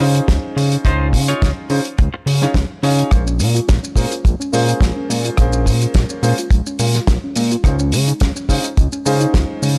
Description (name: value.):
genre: nu-disco, nu disco.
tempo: 106 BPM.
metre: 4/4.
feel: straight.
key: Bb minor.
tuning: A4 = 444 Hz.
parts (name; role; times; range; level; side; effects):
warm grand piano; accompaniment; 0.0-9.8 s; Bb3 to C6; -25 LUFS; equal; sidechain pumping.
clean electric guitar; riff; 0.0-2.9 s; Eb4 to Db5; -27 LUFS; equal; lush chorus, tape echo.
fat analog bass; bass; 0.0-9.8 s; Bb1 to Db3; -19 LUFS; equal; tube saturation.
damped 70s drum kit; drums; 0.0-9.7 s; hi-hat, rim click, shaker, snare drum; -25 LUFS; equal; none.
kick drum; drums; 0.3-9.5 s; none; -17 LUFS; equal; none.
soft round pluck; arpeggios; 3.1-9.7 s; Ab3 to F4; -28 LUFS; equal; chorus, sidechain pumping, analog delay.
room: small room reverb.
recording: dry, gritty hardware recording, transformer saturation.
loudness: -17 LUFS.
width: mono.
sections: 0.0-9.8 A section.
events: none.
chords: 0.0 Dbmaj9; 3.1 Bbm7; 7.6 Dbmaj9.